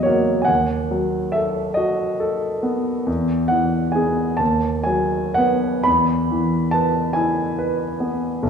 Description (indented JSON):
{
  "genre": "classical, romantic nocturne for solo piano",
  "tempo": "39-48 BPM (dotted quarters)",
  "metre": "12/8",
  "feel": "rubato",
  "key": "E major",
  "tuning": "A4 = 440 Hz",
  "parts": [
    { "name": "warm grand piano", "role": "solo", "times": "0.0-8.5 s", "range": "B1 to B5", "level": "-18 LUFS", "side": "equal", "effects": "none" }
  ],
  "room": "wet recital hall reverb, RT60 1.5 s",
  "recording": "heard from further back in the room",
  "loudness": "-18 LUFS",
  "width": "side -6 dB against mid",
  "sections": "0.0-8.5 A section",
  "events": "none",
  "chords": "0.5 B7/D#; 3.1 E; 4.4 B/D#; 5.9 E"
}